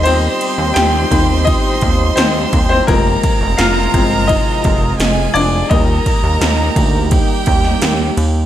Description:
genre	piano-driven pop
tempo	85 BPM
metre	4/4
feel	straight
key	Eb major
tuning	A4 = 440 Hz
part	rich studio violin section	second line	0.0-8.5 s	G4 to C6	-20 LUFS	right 4 dB	none
part	bright upright piano	accompaniment	0.0-8.5 s	Bb2 to G5	-17 LUFS	left 4 dB	none
part	lush unison pad	sustained chords	0.0-8.5 s	C3 to G4	-22 LUFS	right 2 dB	chorus
part	chorused synth bass	bass	0.0-8.5 s	F1 to Eb2	-17 LUFS	equal	none
part	80s electronic pad drums	drums	0.1-8.3 s	kick drum, ride cymbal, snare drum	-16 LUFS	right 1 dB	none
room	light reverb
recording	none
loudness	-11 LUFS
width	side -11 dB against mid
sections	0.0-8.5 A section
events	upright piano solo 0.0-8.5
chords	0.0 Cm/Eb; 2.9 Fm; 5.7 Eb

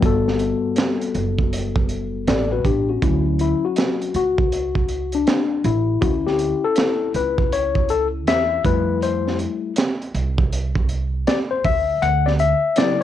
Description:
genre	hip hop, jazz-hop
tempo	80 BPM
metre	4/4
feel	swing 63% on 16ths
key	D major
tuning	A4 = 440 Hz
part	tine electric piano	accompaniment	0.0-13.0 s	C#3 to F#5	-20 LUFS	left 6 dB	medium stereo tremolo, cassette tape
part	upright bass	bass	0.0-12.5 s	F#1 to F2	-24 LUFS	right 3 dB	transformer saturation
part	crunchy breakbeat drum kit	drums	0.0-13.0 s	hi-hat, kick drum, snare drum	-21 LUFS	right 3 dB	cassette tape
room	light reverb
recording	home recording on cassette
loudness	-18 LUFS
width	side -11 dB against mid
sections	0.0-3.0 A section; 3.0-13.0 B section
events	tine electric piano solo 3.0-13.0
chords	0.0 Gmaj9; 3.0 Dmaj9; 8.6 Fmaj9; 11.6 Dmaj9

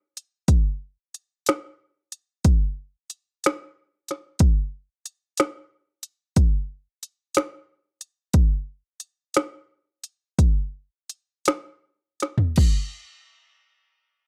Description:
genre	blues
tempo	52-61 BPM (dotted quarters)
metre	12/8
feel	straight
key	none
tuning	none
part	organic electronic drum kit	drums	0.2-12.8 s	crash cymbal, hi-hat, kick drum, snare drum, toms	-21 LUFS	equal	overdrive
room	little or no reverb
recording	dry, close 1970s-style studio recording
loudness	-24 LUFS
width	mono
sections	0.0-12.6 A section; 12.6-14.3 B section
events	slowing down 7.0-12.6; drum fill 12.2-12.6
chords	none

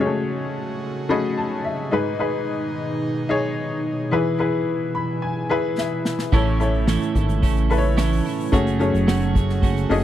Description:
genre	piano-driven pop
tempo	109 BPM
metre	4/4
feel	straight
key	unclear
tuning	A4 = 440 Hz
part	clear upright piano	accompaniment	0.0-10.0 s	G#2 to B5	-23 LUFS	left 3 dB	none
part	airy breathy pad	sustained chords	0.0-10.0 s	B2 to G#4	-29 LUFS	right 2 dB	chorus
part	unplugged drum kit	drums	5.8-10.0 s	hi-hat, kick drum, snare drum	-22 LUFS	equal	none
part	twelve-string electric guitar	riff	6.3-10.0 s	A2 to A4	-25 LUFS	right 9 dB	spring reverb
part	chorused synth bass	bass	6.3-10.0 s	F#1 to A1	-21 LUFS	equal	none
room	little or no reverb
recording	dry, close 1970s-style studio recording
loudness	-19 LUFS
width	side -12 dB against mid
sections	0.0-10.0 A section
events	upright piano fill 0.8-1.9, 4.7-6.3; drum fill 5.8-6.3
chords	0.0 F#madd9; 1.9 G#m; 4.1 E; 6.3 A; 8.5 F#madd9

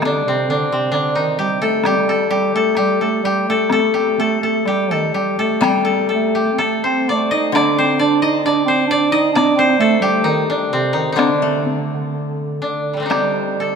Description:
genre	japanese traditional, Japanese chamber music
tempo	61-68 BPM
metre	2/4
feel	rubato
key	D in sen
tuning	A4 = 440 Hz
part	koto	melody	0.0-13.8 s	G3 to Eb5	-17 LUFS	left 2 dB	none
part	mellow bass clarinet	second line	0.0-13.8 s	C3 to Eb4	-20 LUFS	right 5 dB	none
part	koto	accompaniment	0.0-0.9, 5.6-13.8 s	D3 to A3	-24 LUFS	left 6 dB	none
part	taiko ensemble	percussion	0.0-13.3 s	none	-25 LUFS	left 2 dB	none
room	wet church reverb, RT60 3.4 s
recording	none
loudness	-15 LUFS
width	side -6 dB against mid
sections	0.0-13.1 A section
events	none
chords	none

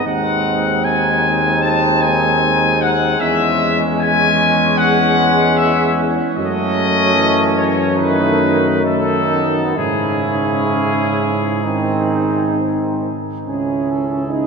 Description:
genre	classical, hymn-like piece for brass band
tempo	63-79 BPM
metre	4/4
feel	rubato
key	C# minor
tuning	A4 = 441 Hz
part	warm trumpet section	melody	0.0-14.5 s	G#4 to A5	-18 LUFS	left 3 dB	none
part	warm flugelhorn	second line	0.0-14.5 s	C#4 to G#4	-22 LUFS	right 5 dB	none
part	warm trombone	accompaniment	0.0-14.5 s	C#3 to D#4	-22 LUFS	right 3 dB	none
part	clear trombone section	accompaniment	0.1-14.5 s	G#3 to E4	-22 LUFS	left 1 dB	none
part	warm tuba	bass	0.1-14.5 s	C#2 to G#2	-20 LUFS	equal	none
room	wet cathedral reverb, RT60 5.3 s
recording	minimal, uncompressed stereo recording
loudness	-13 LUFS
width	side -5 dB against mid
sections	0.0-13.5 A section; 13.5-14.5 B section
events	none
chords	0.0 G#7/D#; 3.2 C#m/E; 6.4 F#m; 8.0 D#dim/F#; 9.8 C#m/G#; 11.7 G#; 13.5 C#m

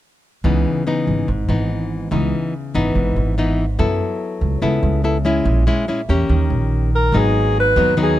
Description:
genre	bossa nova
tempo	143 BPM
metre	4/4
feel	straight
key	C# minor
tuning	A4 = 440 Hz
part	nylon-string guitar	accompaniment	0.4-8.2 s	G#2 to A4	-19 LUFS	left 2 dB	none
part	upright bass	bass	0.4-8.2 s	G#1 to F#2	-18 LUFS	right 1 dB	none
part	breathy alto saxophone	melody	7.0-8.2 s	G#4 to B4	-17 LUFS	equal	none
room	little or no reverb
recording	close, detailed microphones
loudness	-16 LUFS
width	side -14 dB against mid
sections	0.4-7.1 A section; 7.1-8.2 B section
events	none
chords	0.4 C#m9; 3.8 F#m11; 5.5 A#m7b5; 6.3 D#7; 7.1 G#m7

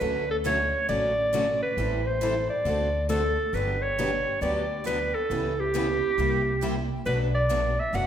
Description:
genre	acoustic string swing (jazz manouche)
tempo	136 BPM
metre	4/4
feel	swing 65% on 8ths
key	D major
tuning	A4 = 441 Hz
part	clear clarinet	melody	0.0-8.1 s	G4 to F#5	-26 LUFS	equal	none
part	picked acoustic archtop guitar	accompaniment	0.0-8.1 s	B2 to B4	-35 LUFS	right 3 dB	none
part	picked steel-string acoustic guitar	accompaniment	0.0-8.1 s	B2 to A4	-32 LUFS	left 2 dB	none
part	upright bass	bass	0.0-8.1 s	F#1 to D2	-30 LUFS	equal	none
room	wet recital hall reverb, RT60 1.4 s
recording	recorded in a church or concert hall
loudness	-23 LUFS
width	side -9 dB against mid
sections	0.0-3.5 A section; 3.5-8.1 B section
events	none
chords	0.0 Dmaj7; 1.8 Am7; 2.7 D7; 3.5 Gmaj7; 5.3 C#m7b5; 6.2 C7; 7.1 Bm7

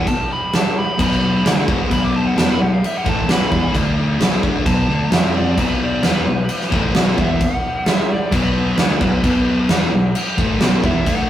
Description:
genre	hard rock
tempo	131 BPM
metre	4/4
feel	straight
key	B minor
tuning	A4 = 441 Hz
part	dark smooth lead guitar	melody	0.0-11.3 s	B4 to D6	-24 LUFS	right 1 dB	overdrive
part	sludgy distorted guitar	riff	0.0-11.3 s	A2 to F4	-20 LUFS	left 2 dB	overdrive
part	sludgy distorted guitar	riff	0.0-11.3 s	A2 to F4	-25 LUFS	right 3 dB	overdrive
part	fingered electric bass	bass	0.0-11.3 s	A1 to F2	-26 LUFS	equal	none
part	huge arena drum kit	drums	0.1-11.2 s	crash cymbal, kick drum, snare drum	-18 LUFS	right 1 dB	none
room	moderate stone room reverb, RT60 1.0 s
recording	rough rehearsal-room recording, warm saturation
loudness	-15 LUFS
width	side -11 dB against mid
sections	0.0-11.3 A section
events	lead electric guitar solo 0.0-11.3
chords	0.0 Bm; 3.7 D5; 4.2 Bm; 5.1 F5; 5.6 Bm

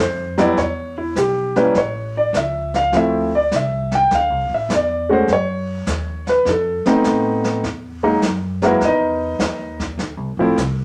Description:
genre	jazz piano trio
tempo	102 BPM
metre	4/4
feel	swing 68% on 8ths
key	unclear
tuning	A4 = 443 Hz
part	clear grand piano	melody	0.0-10.6 s	F3 to G5	-19 LUFS	equal	none
part	upright bass	bass	0.0-10.8 s	A1 to A2	-28 LUFS	equal	none
part	jazz brush drum kit	drums	0.4-10.8 s	brushed snare drum, hi-hat, kick drum, snare drum	-28 LUFS	equal	none
room	moderate studio reverb, RT60 0.5 s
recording	none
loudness	-19 LUFS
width	mono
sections	0.0-10.8 A section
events	none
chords	0.0 Cmaj7; 0.6 Em; 1.8 A; 2.9 Dm7; 5.3 F#5; 6.5 F7#11; 7.6 Emaj7sus2; 10.0 D7(no3)

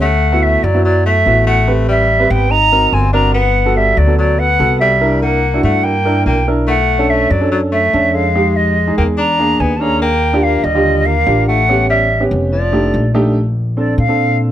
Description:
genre	jazz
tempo	144 BPM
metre	4/4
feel	straight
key	unclear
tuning	A4 = 440 Hz
part	silver concert flute	melody	0.0-14.4 s	D5 to A#5	-15 LUFS	right 1 dB	none
part	warm tenor saxophone	second line	0.0-13.1 s	F3 to D#4	-20 LUFS	left 4 dB	none
part	upright bass	bass	0.0-14.5 s	F1 to Bb2	-16 LUFS	equal	none
part	warm grand piano	accompaniment	0.3-14.5 s	D3 to B4	-17 LUFS	right 2 dB	none
room	light reverb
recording	close, detailed microphones, faint mains hum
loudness	-11 LUFS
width	side -11 dB against mid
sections	0.0-13.4 A section; 13.4-14.5 B section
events	flute solo 13.4-14.5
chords	0.0 D6; 1.7 Am7; 2.5 G#9; 3.4 Gmaj7; 5.0 C9; 6.7 Bm9; 8.4 Fm7; 9.2 E7#11; 10.0 Ebmaj7; 11.7 A7; 12.5 F13; 13.4 Bbmaj9

